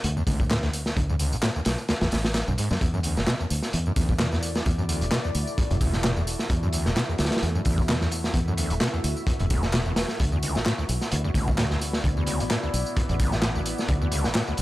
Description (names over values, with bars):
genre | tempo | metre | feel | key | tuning
breakbeat, breaks | 130 BPM | 4/4 | swing 55% on 16ths | unclear | A4 = 440 Hz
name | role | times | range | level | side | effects
overdriven acid bass | riff | 0.0-14.5 s | C#2 to E3 | -29 LUFS | equal | distortion, ensemble chorus, analog delay
fingered electric bass | bass | 0.0-14.6 s | E1 to F#2 | -27 LUFS | equal | none
crunchy breakbeat drum kit | drums | 0.0-14.6 s | hi-hat, kick drum, snare drum | -26 LUFS | equal | none
garage drum kit | drums | 0.0-14.6 s | handclaps, hi-hat, tambourine | -35 LUFS | equal | none
deep dark ambient pad | sustained chords | 3.5-14.6 s | A3 to E5 | -34 LUFS | equal | chorus, built-in reverb, sidechain pumping
room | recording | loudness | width
small room reverb | dry, gritty hardware recording | -22 LUFS | side -17 dB against mid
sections
0.0-14.6 A section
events
none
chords
0.0 D5; 2.8 E9sus4; 10.2 D69